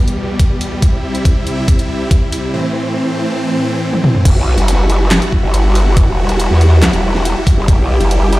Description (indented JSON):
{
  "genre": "heavy wobble dubstep",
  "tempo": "140 BPM",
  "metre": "4/4",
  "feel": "half-time",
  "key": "E minor",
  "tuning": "A4 = 440 Hz",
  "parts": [
    { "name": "supersaw chords", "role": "sustained chords", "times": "0.0-8.4 s", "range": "E2 to G4", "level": "-17 LUFS", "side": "equal", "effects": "sidechain pumping" },
    { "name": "dubstep drum kit", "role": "drums", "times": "0.1-8.4 s", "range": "crash cymbal, handclaps, hi-hat, snare drum, toms", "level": "-17 LUFS", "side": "equal", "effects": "none" },
    { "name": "electronic kick drum", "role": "drums", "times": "0.4-7.8 s", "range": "none", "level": "-11 LUFS", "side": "equal", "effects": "none" },
    { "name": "growl bass", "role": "bass", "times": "4.3-8.4 s", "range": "E1 to E2", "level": "-12 LUFS", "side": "equal", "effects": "chorus, overdrive" }
  ],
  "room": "light reverb",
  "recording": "played on a big sound system in a bare room, stone room reverb",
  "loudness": "-11 LUFS",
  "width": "side -18 dB against mid",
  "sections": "0.0-4.3 A section; 4.3-8.4 B section",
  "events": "build-up 0.0-4.3; drum fill 0.8-2.5, 3.9-4.3; drop 4.3-8.4",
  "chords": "0.0 Em; 0.8 C; 2.5 Am; 4.3 Emadd9"
}